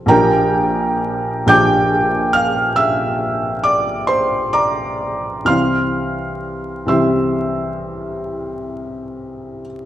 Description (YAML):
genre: classical, romantic nocturne for solo piano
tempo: 40-48 BPM (dotted quarters)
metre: 12/8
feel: rubato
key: unclear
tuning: A4 = 441 Hz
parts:
  - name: felt-muted upright piano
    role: solo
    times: 0.0-9.9 s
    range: Bb1 to G6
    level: -15 LUFS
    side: equal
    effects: none
room: moderate recital hall reverb, RT60 1.4 s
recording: vinyl crackle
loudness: -15 LUFS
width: side -12 dB against mid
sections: 0.0-9.9 A section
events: none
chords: 0.1 Gm7/Bb; 5.5 C